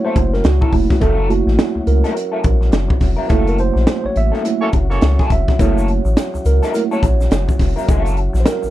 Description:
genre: funk.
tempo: 105 BPM.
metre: 4/4.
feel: swing 60% on 16ths.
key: F# mixolydian.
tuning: A4 = 440 Hz.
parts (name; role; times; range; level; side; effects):
mellow tonewheel organ; sustained chords; 0.0-8.7 s; F#3 to F#4; -27 LUFS; left 1 dB; slow rotary speaker.
mellow tine electric piano; stabs; 0.0-8.7 s; A3 to E5; -20 LUFS; right 3 dB; medium stereo tremolo.
electric guitar at the edge of break-up; accompaniment; 0.1-8.7 s; A#3 to A#4; -24 LUFS; left 2 dB; wah.
round analog bass; bass; 0.2-8.7 s; E#1 to C#2; -16 LUFS; equal; none.
crisp fusion drum kit; drums; 0.2-8.6 s; hi-hat, kick drum, snare drum; -17 LUFS; equal; none.
clear horn section; second line; 4.6-5.3 s; A#3 to C#5; -23 LUFS; right 3 dB; none.
egg shaker; percussion; 5.6-8.7 s; none; -43 LUFS; left 3 dB; none.
room: little or no reverb.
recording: none.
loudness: -13 LUFS.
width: side -14 dB against mid.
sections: 0.0-8.7 A section.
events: tine electric piano solo 0.0-8.7; band accent 3.3-5.6.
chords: 0.0 F#7#9.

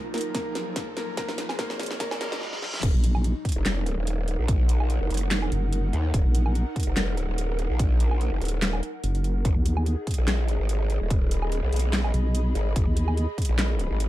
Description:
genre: heavy wobble dubstep.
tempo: 145 BPM.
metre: 4/4.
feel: swing 54% on 16ths, half-time.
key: Eb minor.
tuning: A4 = 439 Hz.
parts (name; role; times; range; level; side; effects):
bright grand piano; melody; 0.0-2.4 s; Bb3 to Bb4; -35 LUFS; left 1 dB; dub echo.
evolving wavetable pad; sustained chords; 0.0-2.4 s; Bb2 to Gb4; -39 LUFS; equal; chorus, built-in reverb, sidechain pumping.
riser and reverse cymbal; sound effects; 0.0-2.8 s; none; -36 LUFS; equal; none.
airy breathy pad; texture; 0.0-14.1 s; Eb4 to Eb6; -35 LUFS; right 1 dB; chorus, sidechain pumping.
dubstep drum kit; drums; 0.1-14.1 s; crash cymbal, handclaps, hi-hat, snare drum, woodblock; -30 LUFS; equal; high-pass filter on snare, high-pass filter on hats, high-pass filter on toms, high-pass filter on perc, high-pass filter on cymbals.
electronic kick drum; drums; 0.3-13.5 s; none; -25 LUFS; equal; none.
growl bass; bass; 2.8-14.1 s; Eb1 to Eb2; -25 LUFS; equal; chorus, overdrive.
vowel-sweep wobble bass; bass; 2.9-13.3 s; Gb1 to Eb2; -23 LUFS; equal; chorus, overdrive.
room: little or no reverb.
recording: dark, warm production, high-pass filter.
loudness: -23 LUFS.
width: side -15 dB against mid.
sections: 0.0-2.8 A section; 2.8-14.1 B section.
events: build-up 0.0-2.8; drum fill 0.0-2.4, 2.4-2.8; riser 0.0-2.4; filter sweep on ambient pad 0.0-2.8; filter sweep 0.0-2.8; reverse cymbal 2.0-2.8; drop 2.8-14.1.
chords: 0.0 Ebmadd9; 1.2 Abm7; 2.8 Ebm; 9.4 Abmadd9.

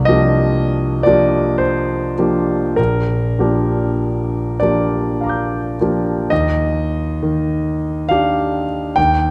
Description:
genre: classical, impressionist solo piano.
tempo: 49-71 BPM.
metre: 3/4.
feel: rubato.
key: Bb major.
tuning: A4 = 438 Hz.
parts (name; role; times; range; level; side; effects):
clear grand piano; solo; 0.0-9.3 s; Bb1 to G6; -17 LUFS; equal; none.
room: wet concert hall reverb, RT60 2.3 s.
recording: dark, warm production.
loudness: -17 LUFS.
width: mono.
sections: 0.0-6.3 A section; 6.3-9.3 B section.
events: none.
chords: 0.0 Cm11; 2.8 Bb6; 6.3 Ebmaj7.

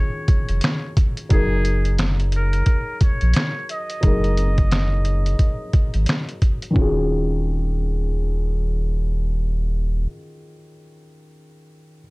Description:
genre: lo-fi hip hop.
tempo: 88 BPM.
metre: 4/4.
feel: swing 61% on 16ths.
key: Eb minor.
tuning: A4 = 440 Hz.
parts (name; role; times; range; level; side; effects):
trumpet with metal mute; melody; 0.0-6.0 s; Ab4 to Eb5; -30 LUFS; right 1 dB; low-pass filter, analog delay.
felt-muted upright piano; accompaniment; 0.0-12.0 s; Eb3 to Bb4; -27 LUFS; left 1 dB; cassette tape, low-pass filter.
trip hop sampler-style drum kit; drums; 0.3-7.0 s; finger snaps, hi-hat, kick drum, snare drum; -18 LUFS; equal; none.
saturated sub bass; bass; 0.5-10.1 s; Eb1 to Bb1; -20 LUFS; equal; none.
room: little or no reverb.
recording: cassette tape.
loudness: -18 LUFS.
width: side -26 dB against mid.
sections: 0.0-6.8 A section; 6.8-9.5 B section.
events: filter sweep 0.0-6.8.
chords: 0.0 Ebm11; 1.3 Gb69; 6.8 Ebm11.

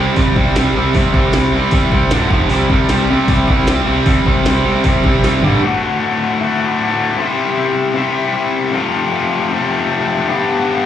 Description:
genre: punk rock.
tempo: 154 BPM.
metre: 4/4.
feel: straight.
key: unclear.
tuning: A4 = 442 Hz.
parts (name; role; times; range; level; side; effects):
distorted electric guitar; riff; 0.0-5.6 s; D2 to C4; -18 LUFS; right 9 dB; overdrive.
overdriven electric guitar; riff; 0.0-5.4 s; C3 to C4; -22 LUFS; equal; slapback echo.
tight distorted guitar; riff; 0.0-10.9 s; D2 to C5; -15 LUFS; left 4 dB; distortion, slapback echo.
fuzz picked electric bass; bass; 0.2-5.6 s; D1 to C2; -19 LUFS; equal; overdrive.
glitchy drum kit; drums; 0.2-5.5 s; hi-hat, kick drum, snare drum, toms; -17 LUFS; equal; none.
room: little or no reverb.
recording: live gig heard through the venue's PA, club reverb.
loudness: -12 LUFS.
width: side -10 dB against mid.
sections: 0.0-5.6 A section; 5.6-10.9 B section.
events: drum fill 5.2-5.6.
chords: 0.0 C5; 2.1 D5; 2.3 F5; 2.5 C5; 5.4 G5; 5.6 D; 7.2 C; 8.7 F; 10.3 G.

